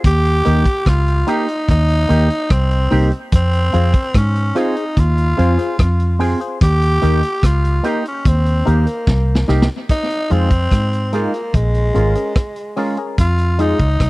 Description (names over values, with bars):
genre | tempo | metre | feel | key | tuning
roots reggae | 73 BPM | 4/4 | straight | F minor | A4 = 440 Hz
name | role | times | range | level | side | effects
percussive organ stab | stabs | 0.0-13.8 s | Db4 to C5 | -22 LUFS | left 4 dB | chorus, phaser
vintage muted fingered electric bass | bass | 0.0-14.1 s | Ab1 to Ab2 | -15 LUFS | equal | none
vintage drum kit | drums | 0.0-14.1 s | hi-hat, kick drum, rim click, snare drum | -16 LUFS | equal | tape echo
growling tenor saxophone | melody | 0.1-14.1 s | Ab3 to G4 | -20 LUFS | equal | dub echo
electric guitar with an envelope filter | accompaniment | 0.5-13.8 s | Ab3 to Ab4 | -23 LUFS | right 3 dB | dub echo
room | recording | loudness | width
little or no reverb | dry, close 1970s-style studio recording | -13 LUFS | side -20 dB against mid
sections
0.0-9.9 A section; 9.9-14.1 B section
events
drum fill 9.1-9.9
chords
0.0 Eb; 3.3 Fm; 6.6 Eb; 9.9 Fm7; 11.5 Bbm7; 13.2 Fm7